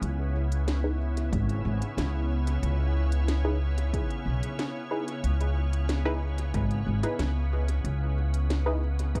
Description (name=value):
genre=ambient dub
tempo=92 BPM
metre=4/4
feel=straight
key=C# minor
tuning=A4 = 439 Hz
part: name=soft additive organ-like pad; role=sustained chords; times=0.0-9.2 s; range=C#3 to C#5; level=-38 LUFS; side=equal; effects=ensemble chorus, built-in reverb
part: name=upright bass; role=bass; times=0.0-9.1 s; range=G#1 to C#2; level=-29 LUFS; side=equal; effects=none
part: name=organic electronic drum kit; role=drums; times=0.0-9.2 s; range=hi-hat, snare drum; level=-40 LUFS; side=equal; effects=overdrive, small room ambience, dub echo
part: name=filtered dub chord stab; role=stabs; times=0.8-8.8 s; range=D#4 to B4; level=-37 LUFS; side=equal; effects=chorus, dub echo
part: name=electronic kick drum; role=drums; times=1.3-9.2 s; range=none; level=-34 LUFS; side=equal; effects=overdrive, small room ambience
room=little or no reverb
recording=dark, warm production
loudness=-28 LUFS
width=mono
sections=0.0-9.2 A section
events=none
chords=0.0 C#m7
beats=| 0.02 0.67 1.32 1.98 | 2.63 3.28 3.93 4.59 | 5.24 5.89 6.54 7.20 | 7.85 8.50 9.15